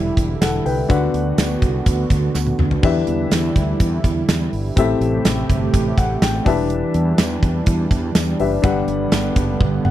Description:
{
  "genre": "1980s-style pop",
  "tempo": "124 BPM",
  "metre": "4/4",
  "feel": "straight",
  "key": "unclear",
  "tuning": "A4 = 439 Hz",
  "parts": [
    { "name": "warm baby grand piano", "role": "accompaniment", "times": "0.0-9.9 s", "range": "G2 to A5", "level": "-22 LUFS", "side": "left 6 dB", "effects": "none" },
    { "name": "warm analog pad", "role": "sustained chords", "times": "0.0-9.9 s", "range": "C3 to G4", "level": "-23 LUFS", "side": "right 3 dB", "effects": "chorus" },
    { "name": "fretless electric bass", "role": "bass", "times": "0.0-9.9 s", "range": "E1 to E2", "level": "-22 LUFS", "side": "equal", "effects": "none" },
    { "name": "gated 80s drum kit", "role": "drums", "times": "0.2-9.9 s", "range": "hi-hat, kick drum, snare drum, splash cymbal, toms", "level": "-19 LUFS", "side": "right 1 dB", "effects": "none" },
    { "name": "tambourine", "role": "percussion", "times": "0.4-9.2 s", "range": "none", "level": "-35 LUFS", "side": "right 21 dB", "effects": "none" }
  ],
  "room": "light reverb",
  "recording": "none",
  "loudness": "-16 LUFS",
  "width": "side -13 dB against mid",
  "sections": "0.0-9.9 A section",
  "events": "drum fill 2.3-2.8, 9.6-9.9; grand piano fill 5.7-6.7, 9.6-9.9",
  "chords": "0.0 Em7; 0.9 Bm; 2.8 Em7; 4.8 Am7; 6.5 Em7; 8.6 Gmaj7"
}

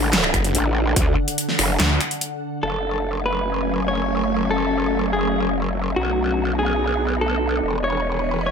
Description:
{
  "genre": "heavy wobble dubstep",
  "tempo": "144 BPM",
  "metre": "4/4",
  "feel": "half-time",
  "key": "F# minor",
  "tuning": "A4 = 439 Hz",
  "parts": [
    { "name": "evolving wavetable pad", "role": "sustained chords", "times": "0.0-8.5 s", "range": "D3 to G#5", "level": "-24 LUFS", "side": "left 1 dB", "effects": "ensemble chorus, built-in reverb, phaser, sidechain pumping" },
    { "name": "growl bass", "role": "bass", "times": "0.0-8.5 s", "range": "E1 to D2", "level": "-23 LUFS", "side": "equal", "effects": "chorus, overdrive" },
    { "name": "big-room dance drum kit", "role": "drums", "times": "0.1-2.3 s", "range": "finger snaps, handclaps, hi-hat, snare drum", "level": "-20 LUFS", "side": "equal", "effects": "low-pass filter on hats, low-pass filter on snare, low-pass filter on room" },
    { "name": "snarling distorted saw bass", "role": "bass", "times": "0.3-2.0 s", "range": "F#1 to D2", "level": "-21 LUFS", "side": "equal", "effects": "distortion, overdrive" },
    { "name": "electronic kick drum", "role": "drums", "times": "0.3-1.0 s", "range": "none", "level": "-22 LUFS", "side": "equal", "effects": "none" },
    { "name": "clean electric guitar", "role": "melody", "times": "2.6-8.5 s", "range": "F#4 to C#5", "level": "-24 LUFS", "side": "equal", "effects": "vintage 12-bit sampler grit, ping-pong delay" },
    { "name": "swell", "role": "sound effects", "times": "8.5 s", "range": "none", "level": "-38 LUFS", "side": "left 6 dB", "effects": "none" }
  ],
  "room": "light reverb, digital ambience",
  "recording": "none",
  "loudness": "-19 LUFS",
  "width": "side -6 dB against mid",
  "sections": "0.0-2.6 A section; 2.6-8.5 B section",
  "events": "drop 0.0-2.6; kick drops out 1.8-2.6",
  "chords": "0.0 D; 2.6 F#madd9; 6.0 Bm; 7.6 E"
}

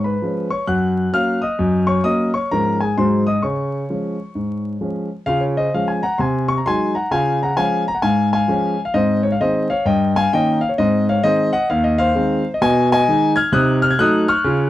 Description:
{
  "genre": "jazz, stride piano",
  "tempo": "131 BPM",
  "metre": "4/4",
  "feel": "swing 64% on 8ths",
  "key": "Db major",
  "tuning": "A4 = 440 Hz",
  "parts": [
    { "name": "clear concert grand piano", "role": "solo", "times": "0.0-14.7 s", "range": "Eb2 to G#6", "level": "-16 LUFS", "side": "left 1 dB", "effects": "none" }
  ],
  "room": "moderate studio reverb, RT60 0.6 s",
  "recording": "dry, close 1970s-style studio recording, vinyl crackle",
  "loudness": "-16 LUFS",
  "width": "side -14 dB against mid",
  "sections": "0.0-5.3 A section; 5.3-14.7 B section",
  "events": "none",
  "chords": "0.0 C#7/G#; 0.7 F#; 1.6 Gb6; 2.5 Db/Ab; 3.0 Ab7; 3.4 Db; 6.2 Ab7/C; 7.1 Db; 8.9 Ab; 9.9 Eb7/G; 10.8 Ab; 12.6 G#m/B; 13.5 Cdim7"
}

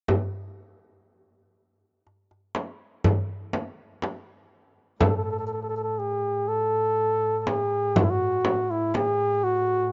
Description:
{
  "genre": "Arabic maqam ensemble",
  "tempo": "122 BPM (eighths)",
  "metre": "10/8",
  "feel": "straight",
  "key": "unclear",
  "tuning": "A4 = 440 Hz",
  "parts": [
    { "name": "darbuka", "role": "percussion", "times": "0.1-9.2 s", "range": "none", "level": "-30 LUFS", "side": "equal", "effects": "none" },
    { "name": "frame drum", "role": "percussion", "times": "0.1-9.2 s", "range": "none", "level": "-28 LUFS", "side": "equal", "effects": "none" },
    { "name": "trumpet with bucket mute", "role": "melody", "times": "5.0-9.9 s", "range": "E4 to A4", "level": "-26 LUFS", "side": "equal", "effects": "none" },
    { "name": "clear double bass", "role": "drone", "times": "5.0-9.9 s", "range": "A2", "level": "-37 LUFS", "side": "equal", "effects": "none" }
  ],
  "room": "light reverb, small room ambience",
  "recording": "rough home demo mix, nothing above 7.5 kHz",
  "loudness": "-26 LUFS",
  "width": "mono",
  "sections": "0.1-5.0 A section; 5.0-9.9 B section",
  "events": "none",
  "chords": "none"
}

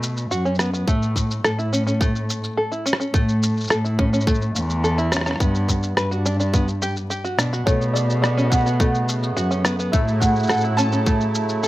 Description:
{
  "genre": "folktronica",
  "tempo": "106 BPM",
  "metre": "4/4",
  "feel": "straight",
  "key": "B minor",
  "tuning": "A4 = 437 Hz",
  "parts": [
    { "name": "open-back banjo", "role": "arpeggios", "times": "0.0-11.7 s", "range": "A3 to B4", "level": "-25 LUFS", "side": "equal", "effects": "low-pass filter, ping-pong delay, plate reverb" },
    { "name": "dark cello", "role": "bass", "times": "0.0-11.6 s", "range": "E2 to B2", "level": "-22 LUFS", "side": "equal", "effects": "none" },
    { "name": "electronic shaker and rim click", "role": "drums", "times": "0.0-11.7 s", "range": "none", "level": "-25 LUFS", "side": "equal", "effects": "none" },
    { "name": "electronic kick drum", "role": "drums", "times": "0.9-11.2 s", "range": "none", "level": "-20 LUFS", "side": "equal", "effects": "none" },
    { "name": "felt-muted upright piano", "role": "melody", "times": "7.7-11.7 s", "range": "C#5 to A5", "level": "-25 LUFS", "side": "right 2 dB", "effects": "plate reverb" },
    { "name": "accordion", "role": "sustained chords", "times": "7.7-11.7 s", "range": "C#3 to E4", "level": "-28 LUFS", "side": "right 2 dB", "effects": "light tremolo tuning, plate reverb" }
  ],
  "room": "light reverb",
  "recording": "vinyl crackle",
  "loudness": "-18 LUFS",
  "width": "side -16 dB against mid",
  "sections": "0.0-11.7 A section",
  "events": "none",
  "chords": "0.0 Bsus2; 0.9 A; 5.4 Gmaj7; 7.7 Bsus2; 9.9 F#m7/A"
}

